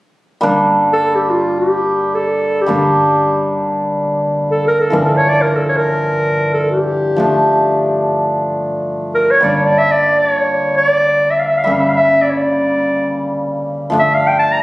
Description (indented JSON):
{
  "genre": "klezmer",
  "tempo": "free time",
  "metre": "none",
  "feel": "none",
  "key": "G dorian sharp4",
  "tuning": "A4 = 439 Hz",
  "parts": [
    { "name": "hammered dulcimer", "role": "accompaniment", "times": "0.4-14.6 s", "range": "C#3 to D4", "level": "-16 LUFS", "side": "equal", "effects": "none" },
    { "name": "upright bass", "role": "bass", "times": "0.4-14.6 s", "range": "G1", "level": "-24 LUFS", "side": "equal", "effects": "none" },
    { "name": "mellow clarinet", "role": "melody", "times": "0.9-14.6 s", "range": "F4 to Bb5", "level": "-14 LUFS", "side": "equal", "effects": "plate reverb" }
  ],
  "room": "moderate studio reverb, RT60 0.5 s",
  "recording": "recorded on a phone in the room, studio reverb, compression",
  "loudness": "-12 LUFS",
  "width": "side -19 dB against mid",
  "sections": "0.4-14.6 A section",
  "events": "none",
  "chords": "0.4 Gm; 4.9 Dmadd9/G; 9.4 Gm; 13.9 Dm/G"
}